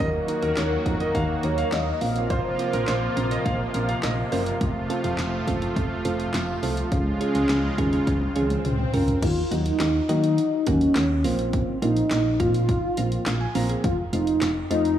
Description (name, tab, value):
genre	synth-pop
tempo	104 BPM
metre	4/4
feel	straight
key	Bb minor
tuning	A4 = 441 Hz
part	warm velvety synth lead	melody	0.0-4.3, 9.2-15.0 s	C4 to F5	-25 LUFS	equal	chorus, diffuse ambient delay
part	clear grand piano	second line	0.0-4.4 s	Bb4 to F5	-32 LUFS	right 1 dB	diffuse ambient delay
part	brassy analog pad	sustained chords	0.0-9.2 s	C3 to Gb4	-28 LUFS	equal	chorus
part	solid FM bass	bass	0.0-15.0 s	F1 to Eb3	-27 LUFS	equal	none
part	soft electric-piano-like synth keys	accompaniment	0.3-15.0 s	F3 to Bb5	-29 LUFS	right 2 dB	chorus
part	punchy analog drum machine	drums	0.3-15.0 s	crash cymbal, handclaps, hi-hat, kick drum, snare drum, toms	-29 LUFS	equal	none
part	swell	sound effects	8.2-9.2 s	none	-36 LUFS	left 4 dB	none
room	moderate plate reverb, RT60 3.3 s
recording	dreamy mix soaked in reverb, small room ambience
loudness	-21 LUFS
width	side -10 dB against mid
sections	0.0-9.2 A section; 9.2-15.0 B section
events	drum fill 8.1-9.2; swell 8.2-9.2; synth keys fill 13.0-13.8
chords	0.0 Ebm; 2.0 Bbsus2; 4.6 F; 6.9 Db; 9.2 Ebm; 11.2 Bbsus2; 13.8 F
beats	0.57 1.15 1.73 | 2.30 2.88 3.46 4.03 | 4.61 5.19 5.76 6.34 | 6.92 7.49 8.07 8.65 | 9.22 9.80 10.38 10.96 | 11.53 12.11 12.69 13.26 | 13.84 14.42